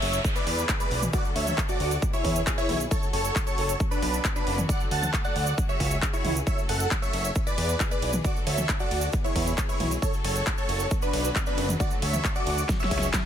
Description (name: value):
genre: uplifting trance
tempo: 135 BPM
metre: 4/4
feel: straight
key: F# minor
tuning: A4 = 440 Hz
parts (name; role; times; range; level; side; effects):
- big supersaw lead; melody; 0.0-13.1 s; D4 to A5; -29 LUFS; right 1 dB; phaser, sidechain pumping, ping-pong delay
- warm symphonic string section; sustained chords; 0.0-13.3 s; B2 to A4; -36 LUFS; left 2 dB; sidechain pumping
- fat analog bass; bass; 0.0-13.1 s; F#1 to E2; -29 LUFS; equal; sidechain pumping
- big-room dance drum kit; drums; 0.0-13.2 s; handclaps, hi-hat, ride cymbal, snare drum, toms; -31 LUFS; equal; overdrive
- downlifter; sound effects; 0.0-2.9 s; none; -36 LUFS; equal; none
- cabasa; percussion; 0.1-13.2 s; none; -37 LUFS; right 6 dB; none
- electronic kick drum; drums; 0.2-13.2 s; none; -27 LUFS; equal; overdrive
room: digital ambience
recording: none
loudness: -24 LUFS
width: side -9 dB against mid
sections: 0.0-13.3 A section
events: drum fill 12.7-13.3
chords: 0.2 E; 1.1 D; 2.0 E; 2.9 F#m; 3.8 Bmadd9; 4.7 D; 5.6 C#sus4; 6.5 F#m; 7.4 E; 8.2 D; 9.1 E; 10.0 F#m; 10.9 Bmadd9; 11.8 D; 12.7 C#sus4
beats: 0.24 0.69 | 1.13 1.58 2.02 2.47 | 2.91 3.36 3.80 4.25 | 4.69 5.13 5.58 6.02 | 6.47 6.91 7.36 7.80 | 8.24 8.69 9.13 9.58 | 10.02 10.47 10.91 11.36 | 11.80 12.24 12.69 13.13